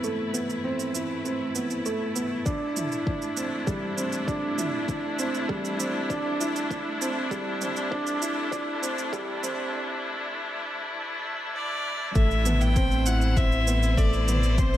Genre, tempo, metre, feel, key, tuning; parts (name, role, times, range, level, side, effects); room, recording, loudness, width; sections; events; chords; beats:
piano and strings electronica; 99 BPM; 4/4; straight; A4 = 440 Hz
clear studio string section; sustained chords; 0.0-14.8 s; A3 to C5; -31 LUFS; left 2 dB; sidechain pumping, low-pass filter
dark upright piano; riff; 0.0-14.8 s; G3 to E4; -29 LUFS; right 1 dB; tape echo
electronic shaker and toms; drums; 0.0-14.8 s; -35 LUFS; right 4 dB; overdrive
electronic kick drum; drums; 2.5-14.7 s; -25 LUFS; left 1 dB
warm violin; melody; 11.6-14.8 s; C5 to G5; -29 LUFS; left 1 dB
round analog bass; bass; 12.2-14.8 s; A1; -24 LUFS; left 1 dB; sidechain pumping
light reverb, small room ambience; high-pass filter; -24 LUFS; side -12 dB against mid
0.0-12.2 A section; 12.2-14.8 B section
build-up 0.0-12.2; filter sweep 0.0-12.2; break 9.7-12.2; drop 12.2-14.8
0.0 Amadd9; 2.5 Cadd9; 12.2 Amadd9
| 0.04 0.64 1.25 1.85 | 2.46 3.07 3.67 4.28 | 4.88 5.49 6.10 6.70 | 7.31 7.92 8.52 9.13 | 9.73 10.34 10.95 11.55 | 12.16 12.76 13.37 13.98 | 14.58